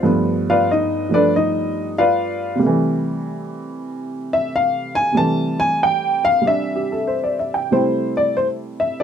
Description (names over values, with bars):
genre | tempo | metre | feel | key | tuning
solo jazz | 94 BPM | 4/4 | swing 68% on 8ths | C major | A4 = 440 Hz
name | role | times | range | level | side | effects
dark upright piano | solo | 0.0-9.0 s | G2 to A5 | -17 LUFS | equal | none
room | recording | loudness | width
light reverb | minimal, uncompressed stereo recording | -16 LUFS | side -8 dB against mid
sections
0.0-7.7 A section; 7.7-9.0 B section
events
upright piano solo 0.0-7.7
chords
0.0 G9; 2.6 C6